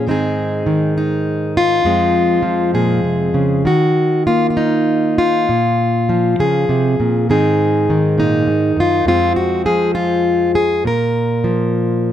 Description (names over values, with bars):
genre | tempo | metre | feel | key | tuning
folk, solo fingerstyle acoustic guitar | 67 BPM (dotted quarters) | 6/8 | rubato | unclear | A4 = 440 Hz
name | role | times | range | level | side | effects
fingerpicked plugged-in steel-string acoustic guitar | solo | 0.0-12.1 s | F2 to Bb4 | -13 LUFS | equal | none
room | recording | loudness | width
light reverb | close, detailed microphones | -13 LUFS | side -10 dB against mid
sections
0.0-12.1 A section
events
none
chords
0.1 Ab; 1.8 Fm; 3.6 Ebm; 5.5 Bbm; 7.3 Ab; 9.1 Fm; 10.9 Bb5